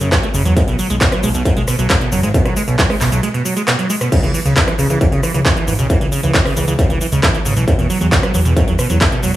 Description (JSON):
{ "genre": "uplifting trance", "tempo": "135 BPM", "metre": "4/4", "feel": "straight", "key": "C# minor", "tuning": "A4 = 440 Hz", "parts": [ { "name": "liquid acid bass", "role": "arpeggios", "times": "0.0-9.4 s", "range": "B2 to A3", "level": "-19 LUFS", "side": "right 2 dB", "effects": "chorus, vintage 12-bit sampler grit, sidechain pumping, digital delay" }, { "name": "fat analog bass", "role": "bass", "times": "0.0-9.3 s", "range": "E1 to F#2", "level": "-17 LUFS", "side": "equal", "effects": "sidechain pumping" }, { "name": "big-room dance drum kit", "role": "drums", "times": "0.0-9.3 s", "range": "crash cymbal, handclaps, hi-hat, rim click, shaker", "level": "-19 LUFS", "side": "equal", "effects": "overdrive" }, { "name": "electronic kick drum", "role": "drums", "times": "0.1-9.1 s", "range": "none", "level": "-15 LUFS", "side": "equal", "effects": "distortion" } ], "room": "little or no reverb", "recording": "studio ambience", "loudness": "-13 LUFS", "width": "side -14 dB against mid", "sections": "0.0-9.4 A section", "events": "break 3.2-4.1", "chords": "0.0 F#7(no3); 0.6 B5; 4.1 C#m; 7.7 Esus2", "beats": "0.12 | 0.57 1.01 1.45 1.90 | 2.34 2.79 3.23 3.68 | 4.12 4.57 5.01 5.45 | 5.90 6.34 6.79 7.23 | 7.68 8.12 8.57 9.01" }